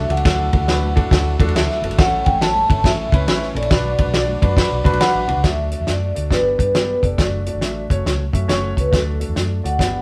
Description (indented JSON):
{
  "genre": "uptempo 1960s-style soul",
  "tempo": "138 BPM",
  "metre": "4/4",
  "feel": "swing 65% on 8ths",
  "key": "D major",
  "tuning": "A4 = 441 Hz",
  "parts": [
    { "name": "vibraphone with soft mallets", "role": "melody", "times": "0.0-10.0 s", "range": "A4 to A5", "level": "-24 LUFS", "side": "equal", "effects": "none" },
    { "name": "warm grand piano", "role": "accompaniment", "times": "0.0-10.0 s", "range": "A3 to B5", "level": "-28 LUFS", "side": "equal", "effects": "none" },
    { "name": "overdriven tonewheel organ", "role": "sustained chords", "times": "0.0-5.4 s", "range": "E3 to E4", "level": "-35 LUFS", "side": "equal", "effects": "none" },
    { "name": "vintage muted fingered electric bass", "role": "bass", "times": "0.0-10.0 s", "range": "F1 to A2", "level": "-25 LUFS", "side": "equal", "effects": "none" },
    { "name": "warm soul drum kit", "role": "drums", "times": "0.1-9.9 s", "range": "hi-hat, kick drum, ride cymbal, snare drum", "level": "-21 LUFS", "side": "equal", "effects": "none" },
    { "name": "congas", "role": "percussion", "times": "0.1-5.4 s", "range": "none", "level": "-36 LUFS", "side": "equal", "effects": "none" }
  ],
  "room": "moderate studio reverb, RT60 0.8 s",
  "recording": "band playing live in one room",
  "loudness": "-18 LUFS",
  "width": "mono",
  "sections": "0.0-5.4 A section; 5.4-10.0 B section",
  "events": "grand piano fill 4.1-5.4",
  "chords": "0.0 D; 2.0 A; 3.7 Bm; 5.4 D; 6.3 G; 7.2 D/F#; 7.8 F#m; 8.9 D",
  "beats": "| 0.25 0.69 1.12 1.55 | 1.98 2.41 2.84 3.28 | 3.71 4.14 4.57 5.01 | 5.44 5.88 6.31 6.75 | 7.19 7.62 8.06 8.50 | 8.93 9.37 9.80"
}